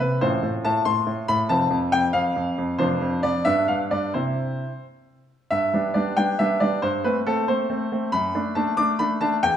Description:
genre	classical-period piano sonatina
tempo	92 BPM (dotted quarters)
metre	6/8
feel	rubato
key	C major, G major from 5.5 s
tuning	A4 = 442 Hz
part	bright baby grand piano	solo	0.0-9.6 s	F1 to D6	-20 LUFS	equal	none
room	wet recital hall reverb, RT60 1.4 s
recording	minimal, uncompressed stereo recording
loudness	-20 LUFS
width	side -9 dB against mid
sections	0.0-5.5 A section; 5.5-9.6 B section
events	none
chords	0.2 F/A; 1.5 F; 2.8 Dm7/F; 3.4 G; 4.1 C; 5.5 G; 6.8 Am7/G; 8.1 D/F#

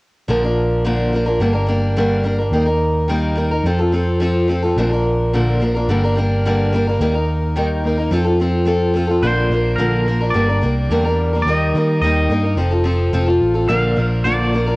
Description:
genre	rock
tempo	107 BPM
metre	4/4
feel	straight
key	unclear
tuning	A4 = 440 Hz
part	picked steel-string acoustic guitar	accompaniment	0.3-14.8 s	G2 to Bb4	-17 LUFS	equal	cassette tape
part	picked electric bass	bass	0.3-14.8 s	F1 to Eb3	-18 LUFS	equal	none
part	twangy electric guitar	melody	9.2-14.8 s	Bb4 to F5	-22 LUFS	equal	cassette tape, analog delay
room	light reverb, small room ambience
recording	home recording on cassette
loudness	-15 LUFS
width	side -23 dB against mid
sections	0.3-9.2 A section; 9.2-14.8 B section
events	none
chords	0.3 Bb; 1.4 Gm; 2.5 Eb; 3.6 F; 4.8 Bb; 5.9 Gm; 7.0 Eb; 8.1 F; 9.2 Bb; 10.3 Gm; 11.5 Eb; 12.6 F; 13.7 Bb

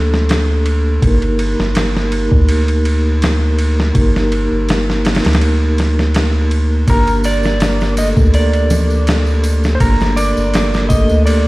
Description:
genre	trip hop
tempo	82 BPM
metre	4/4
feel	swing 54% on 16ths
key	G minor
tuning	A4 = 440 Hz
part	vibraphone with soft mallets	accompaniment	0.0-11.5 s	A3 to Bb4	-18 LUFS	equal	tremolo, tape echo
part	round analog bass	bass	0.0-11.5 s	G1 to D2	-15 LUFS	equal	tube saturation
part	boom bap sampler-style drum kit	drums	0.1-11.5 s	kick drum, ride cymbal, snare drum	-18 LUFS	equal	none
part	clean lap steel guitar	melody	6.9-11.5 s	Bb4 to Eb5	-19 LUFS	right 1 dB	vintage 12-bit sampler grit, tape echo
part	tambourine and congas	percussion	6.9-11.4 s	none	-27 LUFS	right 1 dB	none
room	digital ambience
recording	played on a big sound system in a bare room, stone room reverb, vinyl crackle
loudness	-12 LUFS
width	side -20 dB against mid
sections	0.0-11.5 A section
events	none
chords	0.0 Gmadd9; 1.0 Eb/G; 6.9 Gmadd9

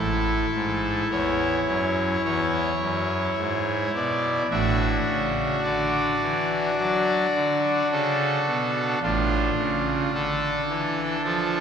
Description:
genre	classical, chorale-style piece for pipe organ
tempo	53 BPM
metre	4/4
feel	rubato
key	unclear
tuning	A4 = 440 Hz
part	pipe organ, trumpet	solo	0.0-11.6 s	A1 to E5	-22 LUFS	equal	none
room	wet cathedral reverb, RT60 4.5 s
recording	recorded in a church or concert hall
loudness	-22 LUFS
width	side -7 dB against mid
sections	0.0-11.6 A section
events	none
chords	0.0 A; 4.5 D/A; 9.0 Dm/A

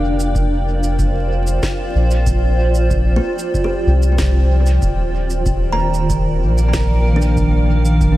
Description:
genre	ambient dub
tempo	94 BPM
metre	4/4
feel	straight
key	unclear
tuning	A4 = 441 Hz
part	granular cloud pad	sustained chords	0.0-8.2 s	Eb3 to G5	-20 LUFS	right 1 dB	built-in reverb, vintage 12-bit sampler grit
part	kalimba	arpeggios	0.0-8.2 s	D4 to Bb5	-26 LUFS	equal	tape echo
part	soft dub sub bass	bass	0.0-8.2 s	Eb1 to C2	-15 LUFS	equal	none
part	electronic shaker and snare drum	drums	0.2-8.1 s	none	-29 LUFS	equal	dub echo
part	electronic kick drum	drums	0.4-8.1 s	none	-22 LUFS	equal	none
room	light reverb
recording	vinyl crackle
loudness	-14 LUFS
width	side -16 dB against mid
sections	0.0-8.2 A section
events	none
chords	0.0 Fsus2; 4.8 Ebmaj7

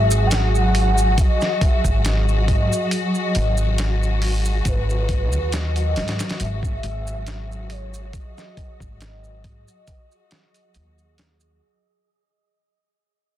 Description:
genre	trip hop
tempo	69 BPM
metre	4/4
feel	swing 53% on 16ths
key	unclear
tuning	A4 = 440 Hz
part	pure breathy sine lead	melody	0.0-11.2 s	B4 to G#5	-27 LUFS	left 1 dB	ensemble chorus, dub echo
part	warm studio string section	sustained chords	0.0-11.6 s	F#3 to F#4	-27 LUFS	left 2 dB	none
part	upright bass	bass	0.0-11.6 s	G#1 to G#2	-21 LUFS	equal	tube saturation
part	wind-like tuned noise texture	texture	0.0-11.6 s	G#4	-33 LUFS	right 10 dB	built-in reverb
part	maracas	percussion	0.1-11.6 s	none	-32 LUFS	right 3 dB	none
part	dusty soul sampler-style drum kit	drums	0.3-11.4 s	hi-hat, kick drum, snare drum	-23 LUFS	equal	small room ambience
room	small room ambience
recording	dense, heavily limited modern master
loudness	-18 LUFS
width	side -12 dB against mid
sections	0.0-11.6 A section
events	fade-out 0.0-11.6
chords	0.0 F#sus2/G#; 4.7 G#m7; 6.4 F#sus2/G#; 8.1 G#5

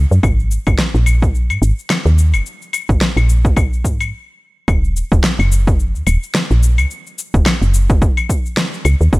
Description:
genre	organic downtempo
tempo	108 BPM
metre	4/4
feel	swing 57% on 16ths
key	Eb minor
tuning	A4 = 440 Hz
part	woody FM bass	bass	0.0-9.2 s	Eb1 to Ab2	-13 LUFS	equal	sidechain pumping
part	electronic cabasa, claves and snare drum	drums	0.1-9.2 s	none	-20 LUFS	left 1 dB	overdrive, small room ambience
part	electronic kick drum	drums	0.2-9.2 s	none	-15 LUFS	equal	overdrive, small room ambience
room	digital ambience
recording	none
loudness	-13 LUFS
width	side -22 dB against mid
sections	0.0-4.7 A section; 4.7-9.2 B section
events	stop 4.1-4.7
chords	none

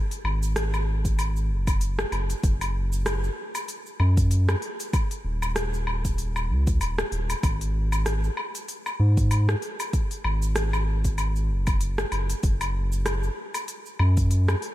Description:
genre	organic downtempo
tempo	96 BPM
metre	4/4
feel	swing 57% on 16ths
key	unclear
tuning	A4 = 440 Hz
part	organic electronic drum kit	drums	0.1-14.7 s	cabasa, hi-hat, rim click, woodblock	-30 LUFS	left 1 dB	none
part	round analog bass	bass	0.2-14.5 s	Eb1 to Ab2	-23 LUFS	equal	none
part	electronic kick drum	drums	1.0-14.3 s	none	-25 LUFS	equal	none
room	little or no reverb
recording	none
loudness	-23 LUFS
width	side -15 dB against mid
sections	0.0-14.7 A section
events	none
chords	none

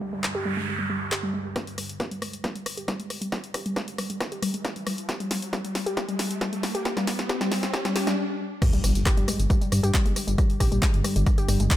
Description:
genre	driving peak-time techno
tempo	136 BPM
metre	4/4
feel	straight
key	unclear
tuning	A4 = 439 Hz
part	warbly dusty pluck	riff	0.0-11.6 s	G3 to G4	-29 LUFS	left 1 dB	chorus, sidechain pumping, dub echo
part	deep dark ambient pad	drone	0.0-1.6, 9.4-11.8 s	G2 to D3	-38 LUFS	right 1 dB	chorus, built-in reverb, sidechain pumping
part	noise sweep, riser and impact	sound effects	0.1-10.4 s	none	-33 LUFS	right 1 dB	none
part	punchy analog drum machine	drums	0.2-11.8 s	crash cymbal, handclaps, hi-hat, rim click, snare drum, tambourine	-30 LUFS	equal	overdrive, sidechain pumping on cymbals, high-pass filter on cymbals, studio reverb, high-pass filter on snare, sidechain pumping on hats, high-pass filter on hats, sidechain pumping on perc, high-pass filter on perc
part	electronic kick drum	drums	1.6-11.8 s	none	-24 LUFS	equal	high-pass filter on kick, studio reverb
part	dark detuned saw bass	bass	8.8-11.7 s	G1 to G2	-23 LUFS	equal	sidechain pumping
room	moderate stone room reverb, RT60 1.1 s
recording	none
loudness	-24 LUFS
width	side -13 dB against mid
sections	0.0-1.6 A section; 1.6-8.6 B section; 8.6-11.8 C section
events	filter sweep on drum 0.0-1.6; noise sweep 0.1-1.6; build-up 1.6-8.6; drum fill 1.6-8.2; riser 1.6-8.2; filter sweep on synth arpeggio sound 1.6-8.6; stop 8.2-8.6; drop 8.6-11.8; impact 8.6-10.4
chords	0.0 G5; 1.6 N.C.; 8.6 G5

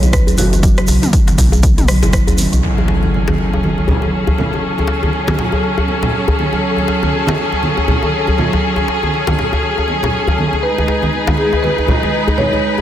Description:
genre	afro house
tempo	120 BPM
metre	4/4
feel	swing 59% on 16ths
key	F# dorian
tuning	A4 = 440 Hz
part	marimba with soft mallets	melody	0.0-1.1, 10.6-12.8 s	F#4 to C#5	-20 LUFS	equal	digital delay
part	kalimba	arpeggios	0.0-2.6 s	C#3 to E4	-21 LUFS	right 1 dB	sidechain pumping, digital delay
part	warm sub bass	bass	0.0-2.6 s	F#1 to B1	-15 LUFS	equal	sidechain pumping
part	deep house drum kit	drums	0.0-2.8 s	crash cymbal, hi-hat, rim click, toms	-21 LUFS	equal	overdrive, low-pass filter on hats, low-pass filter on snare, low-pass filter on toms, low-pass filter on cymbals
part	congas	percussion	0.0-12.8 s	none	-22 LUFS	right 2 dB	none
part	djembe	percussion	0.0-12.8 s	none	-20 LUFS	left 1 dB	none
part	egg shaker	percussion	0.0-2.6 s	none	-28 LUFS	right 3 dB	none
part	electronic kick drum	drums	0.1-2.2 s	none	-14 LUFS	equal	overdrive
part	rich studio string section	sustained chords	2.6-12.8 s	F#3 to B4	-17 LUFS	equal	sidechain pumping
part	impact	sound effects	2.6-4.6 s	none	-20 LUFS	equal	none
room	light reverb, small room ambience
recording	dense, heavily limited modern master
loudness	-12 LUFS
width	side -11 dB against mid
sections	0.0-2.6 A section; 2.6-12.8 B section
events	impact 2.6-4.6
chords	0.0 Bsus2; 2.6 F#m; 10.6 G#m

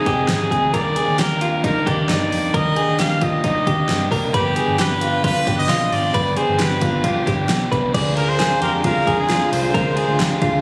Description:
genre	jangly indie pop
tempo	133 BPM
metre	4/4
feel	straight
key	unclear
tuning	A4 = 437 Hz
part	bright trumpet	melody	0.0-10.2 s	G4 to F5	-25 LUFS	equal	none
part	crunchy overdriven guitar	accompaniment	0.0-10.6 s	G2 to Ab4	-27 LUFS	equal	none
part	direct-recorded clean electric guitar	arpeggios	0.0-10.6 s	Eb4 to D5	-24 LUFS	equal	none
part	vintage muted fingered electric bass	bass	0.1-10.6 s	F1 to G2	-27 LUFS	equal	none
part	deep house drum kit	drums	0.1-10.5 s	crash cymbal, hi-hat, kick drum, ride cymbal, snare drum	-26 LUFS	equal	overdrive
part	muted studio string section	sustained chords	7.9-10.6 s	D3 to F4	-30 LUFS	equal	none
part	glockenspiel with soft plastic mallets	second line	8.2-10.2 s	Ab5 to C6	-32 LUFS	equal	none
room	digital ambience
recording	recorded on a phone in the room, studio reverb, compression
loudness	-19 LUFS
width	mono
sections	0.0-7.9 A section; 7.9-10.6 B section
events	none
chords	0.0 Fm7; 0.7 Ebmaj7; 4.3 G7; 7.9 Ddim

